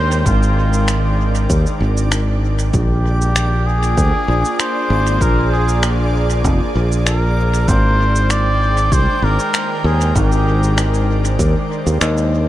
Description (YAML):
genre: ambient dub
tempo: 97 BPM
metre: 4/4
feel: straight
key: unclear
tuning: A4 = 440 Hz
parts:
  - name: trumpet with cup mute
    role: melody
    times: 0.0-11.1 s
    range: F4 to D5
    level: -21 LUFS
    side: equal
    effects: dub echo
  - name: airy breathy pad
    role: sustained chords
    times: 0.0-12.5 s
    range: Eb3 to G5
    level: -23 LUFS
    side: equal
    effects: chorus
  - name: fingered electric bass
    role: bass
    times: 0.0-12.5 s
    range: F1 to Eb2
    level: -16 LUFS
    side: equal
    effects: none
  - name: backwards swelling texture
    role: texture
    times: 0.0-12.5 s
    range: D4 to D5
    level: -29 LUFS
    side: left 1 dB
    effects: built-in reverb
  - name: electronic cabasa and finger snaps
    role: drums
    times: 0.1-12.3 s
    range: none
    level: -25 LUFS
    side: equal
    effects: dub echo
  - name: electronic kick drum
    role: drums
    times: 0.3-11.5 s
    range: none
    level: -18 LUFS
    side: equal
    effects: none
room: light reverb, digital ambience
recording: none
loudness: -13 LUFS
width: side -14 dB against mid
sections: 0.0-12.5 A section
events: none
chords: 0.0 Abmaj7; 2.7 Bb7; 7.7 Abmaj7